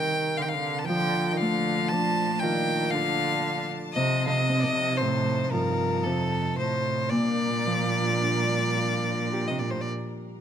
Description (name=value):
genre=celtic folk, Celtic slow air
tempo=52-60 BPM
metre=3/4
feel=rubato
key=unclear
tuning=A4 = 442 Hz
part: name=rich fiddle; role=melody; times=0.0-9.9 s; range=A4 to A5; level=-27 LUFS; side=left 2 dB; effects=none
part: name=rich cello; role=second line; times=0.0-9.9 s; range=F2 to F3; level=-30 LUFS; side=right 5 dB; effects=none
part: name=Celtic harp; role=accompaniment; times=0.0-10.4 s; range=Bb2 to Eb5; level=-29 LUFS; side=left 1 dB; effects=none
part: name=bright studio string section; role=sustained chords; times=0.0-10.4 s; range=Bb2 to A5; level=-38 LUFS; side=left 1 dB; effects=none
room=light reverb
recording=close, detailed microphones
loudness=-23 LUFS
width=side -9 dB against mid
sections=0.0-10.4 A section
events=none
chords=0.0 Cm7; 0.9 Bbmaj7; 4.0 F7; 7.1 Bb6